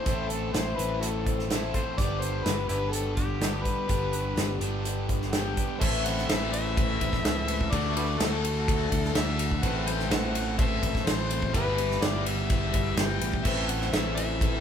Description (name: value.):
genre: folk rock and heartland rock.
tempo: 126 BPM.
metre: 4/4.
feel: straight.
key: A dorian from 5.8 s.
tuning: A4 = 441 Hz.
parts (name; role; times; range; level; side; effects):
overdriven harmonica; melody; 0.0-14.6 s; E4 to G5; -33 LUFS; left 2 dB; none.
picked twelve-string acoustic guitar; accompaniment; 0.0-14.6 s; A2 to C5; -36 LUFS; left 6 dB; none.
warm concert grand piano; accompaniment; 0.0-14.6 s; B3 to D5; -41 LUFS; right 3 dB; none.
crunchy overdriven guitar; riff; 0.0-14.6 s; G2 to A4; -33 LUFS; equal; none.
fingered electric bass; bass; 0.1-14.6 s; G1 to D2; -31 LUFS; right 1 dB; none.
natural country drum kit; drums; 0.1-14.5 s; crash cymbal, hi-hat, kick drum, ride cymbal, snare drum; -28 LUFS; equal; none.
room: light reverb.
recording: band playing live in one room.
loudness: -25 LUFS.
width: side -8 dB against mid.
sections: 0.0-5.8 A section; 5.8-14.6 B section.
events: none.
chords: 0.0 Am; 2.0 G; 5.8 Amadd9; 7.7 Dadd9; 9.6 Amadd9; 11.5 Em/G; 13.5 Amadd9.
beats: | 0.06 0.54 1.02 1.50 | 1.97 2.45 2.93 3.41 | 3.89 4.37 4.85 5.33 | 5.81 6.29 6.76 7.24 | 7.72 8.20 8.68 9.15 | 9.63 10.11 10.59 11.07 | 11.54 12.02 12.50 12.98 | 13.46 13.93 14.41.